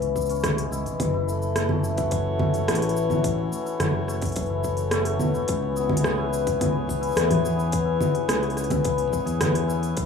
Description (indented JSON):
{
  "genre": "folktronica",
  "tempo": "107 BPM",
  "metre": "4/4",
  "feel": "straight",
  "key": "unclear",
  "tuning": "A4 = 440 Hz",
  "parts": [
    { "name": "cimbalom", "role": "arpeggios", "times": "0.0-10.1 s", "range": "E3 to G#4", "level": "-27 LUFS", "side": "left 5 dB", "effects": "tape echo" },
    { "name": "modern bright fingered electric bass", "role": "bass", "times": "0.0-10.1 s", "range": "E1 to E2", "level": "-27 LUFS", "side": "left 1 dB", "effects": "tube saturation" },
    { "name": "organic electronic drum kit", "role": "drums", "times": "0.0-10.1 s", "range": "cabasa, congas, hi-hat, rim click", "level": "-26 LUFS", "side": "equal", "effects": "overdrive" },
    { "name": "electronic kick drum", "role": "drums", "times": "0.2-10.1 s", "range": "none", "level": "-32 LUFS", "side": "left 1 dB", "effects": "overdrive" },
    { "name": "pedal harmonium", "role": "sustained chords", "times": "1.0-10.0 s", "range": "E3 to C#5", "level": "-31 LUFS", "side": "equal", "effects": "none" }
  ],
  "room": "light reverb",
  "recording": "rough home demo mix, small room reverb",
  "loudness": "-22 LUFS",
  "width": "side -6 dB against mid",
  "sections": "0.0-10.0 A section",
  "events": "kick drops out 9.4-10.0",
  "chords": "0.0 C#m7; 1.0 F#m7; 5.5 C#m7"
}